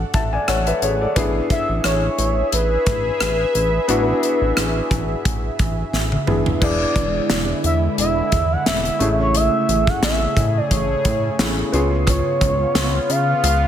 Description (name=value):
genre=1980s-style pop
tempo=88 BPM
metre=4/4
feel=swing 55% on 16ths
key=unclear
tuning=A4 = 439 Hz
part: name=clear concert grand piano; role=accompaniment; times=0.0-13.7 s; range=A3 to A5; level=-24 LUFS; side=left 2 dB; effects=shimmer reverb
part: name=sweeping resonant pad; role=sustained chords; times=0.0-13.7 s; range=C#3 to F#5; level=-26 LUFS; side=right 1 dB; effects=chorus, shimmer reverb
part: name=chorused synth bass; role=bass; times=0.0-13.7 s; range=E1 to C#3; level=-22 LUFS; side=equal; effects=none
part: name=modern studio drum kit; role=drums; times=0.1-13.6 s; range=crash cymbal, hi-hat, kick drum, rim click, snare drum, toms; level=-22 LUFS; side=equal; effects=gated reverb
part: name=expressive synth lead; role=melody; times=1.5-13.7 s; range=B4 to F#5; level=-22 LUFS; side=equal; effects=chorus, ping-pong delay, shimmer reverb
part: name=cowbell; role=percussion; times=12.1-13.6 s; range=none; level=-32 LUFS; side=right 9 dB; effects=none
room=light reverb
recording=none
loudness=-16 LUFS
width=side -10 dB against mid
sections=0.0-6.6 A section; 6.6-13.7 B section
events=drum fill 5.9-6.6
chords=0.0 D/A; 1.2 E7/A; 6.6 E7; 9.0 Amaj7; 11.7 C#7